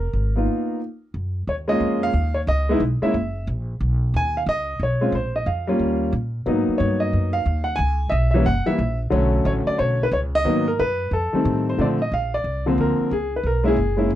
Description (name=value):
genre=jazz piano trio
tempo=181 BPM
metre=4/4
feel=swing 65% on 8ths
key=F# major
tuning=A4 = 438 Hz
part: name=warm baby grand piano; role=melody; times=0.0-14.2 s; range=D3 to G#5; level=-21 LUFS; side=equal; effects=none
part: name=upright bass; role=bass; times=0.0-14.2 s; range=F1 to A#2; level=-23 LUFS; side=equal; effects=none
room=light reverb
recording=dry, close 1970s-style studio recording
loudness=-19 LUFS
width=side -12 dB against mid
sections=0.0-1.1 A section; 1.1-11.8 B section; 11.8-14.2 A section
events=stop 0.5-1.1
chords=0.0 Abm69/F; 1.1 F#maj9; 2.5 C#m9; 3.1 F#7; 3.8 B69; 5.1 A#5; 5.8 D#7; 6.5 G#m9; 7.8 C#m7; 8.5 F#7; 9.1 Bm9; 10.5 G#m7; 11.1 F7; 11.8 Bb; 13.1 Db7(no3)